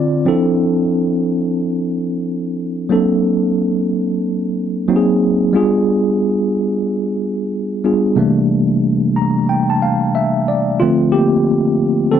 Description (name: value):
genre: R&B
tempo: 91 BPM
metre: 4/4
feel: swing 62% on 16ths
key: D minor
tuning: A4 = 440 Hz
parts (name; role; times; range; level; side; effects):
- tine electric piano; solo; 0.0-12.2 s; C3 to Bb5; -14 LUFS; equal; fast stereo tremolo
room: little or no reverb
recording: dry, close 1970s-style studio recording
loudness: -14 LUFS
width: side -9 dB against mid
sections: 0.3-10.8 A section; 10.8-12.2 B section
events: tine electric piano fill 8.8-10.8; tine electric piano solo 10.8-12.2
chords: 0.3 Dm9; 2.9 D7b13; 4.9 G#9; 5.5 G7b9; 8.2 C13; 10.8 Dm7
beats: | 0.25 0.91 1.57 2.23 | 2.89 3.55 4.21 4.87 | 5.53 6.19 6.85 7.51 | 8.17 8.83 9.48 10.14 | 10.80 11.46 12.12